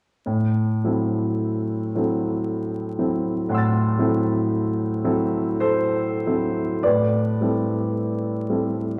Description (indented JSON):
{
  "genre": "classical, impressionist solo piano",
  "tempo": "45-60 BPM",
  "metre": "3/4",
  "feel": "rubato",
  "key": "A minor",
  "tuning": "A4 = 440 Hz",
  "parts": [
    { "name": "clear concert grand piano", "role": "solo", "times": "0.3-9.0 s", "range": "A2 to A6", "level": "-23 LUFS", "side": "equal", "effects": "none" }
  ],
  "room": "wet concert hall reverb, RT60 1.9 s",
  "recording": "vinyl crackle",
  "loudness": "-23 LUFS",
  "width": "mono",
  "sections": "0.3-6.9 A section; 6.9-9.0 B section",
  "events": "none",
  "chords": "0.3 Am6; 6.9 Am7"
}